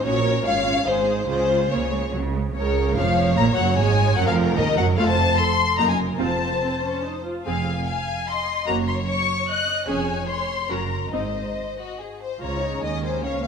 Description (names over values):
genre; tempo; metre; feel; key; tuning
quick classical-period movement for string orchestra; 146 BPM; 3/4; rubato; Bb minor, Db major from 7.5 s; A4 = 438 Hz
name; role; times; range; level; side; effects
warm studio violin section; melody; 0.0-13.5 s; Ab4 to Gb6; -25 LUFS; left 5 dB; none
clear studio violin section; second line; 0.0-13.5 s; Gb4 to Ab5; -26 LUFS; left 3 dB; none
warm studio viola section; accompaniment; 0.0-13.5 s; Db3 to Ab4; -27 LUFS; right 2 dB; none
warm studio cello section; bass; 0.0-13.5 s; Db2 to Eb3; -28 LUFS; right 4 dB; none
warm studio double bass section; bass; 0.0-13.5 s; F1 to Eb2; -27 LUFS; right 4 dB; none
room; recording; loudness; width
wet concert hall reverb, RT60 2.0 s; none; -20 LUFS; side -6 dB against mid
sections
0.0-2.6 A section; 2.6-12.4 B section; 12.4-13.5 A section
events
none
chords
0.1 Gb/Bb; 0.5 Db/Ab; 0.9 Ab; 1.3 Db; 2.6 Bbm; 3.8 Ebm; 5.0 F; 5.8 Ebm/Gb; 6.2 F; 7.5 Fm; 8.7 Gb; 9.9 Db/F; 10.7 Gb; 11.1 Ab; 12.4 Db